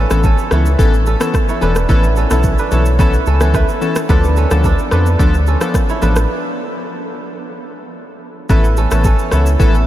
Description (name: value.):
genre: afrobeats.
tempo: 109 BPM.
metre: 4/4.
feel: straight.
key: A major.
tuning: A4 = 440 Hz.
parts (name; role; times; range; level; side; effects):
kora; riff; 0.0-9.9 s; C#4 to C#5; -22 LUFS; right 5 dB; tape echo.
round analog bass; bass; 0.0-9.9 s; E1 to F2; -14 LUFS; equal; none.
warm analog keys; accompaniment; 0.1-9.8 s; E3 to A4; -19 LUFS; left 2 dB; chorus.
afro-pop drum kit; drums; 0.1-9.9 s; kick drum, rim click, shaker; -17 LUFS; equal; none.
room: moderate huge ambient reverb, RT60 8.5 s.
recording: dreamy mix soaked in reverb.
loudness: -11 LUFS.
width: side -13 dB against mid.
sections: 0.0-9.9 A section.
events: break 6.3-8.5.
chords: 0.0 Aadd9; 4.1 Dm6; 8.5 Aadd9.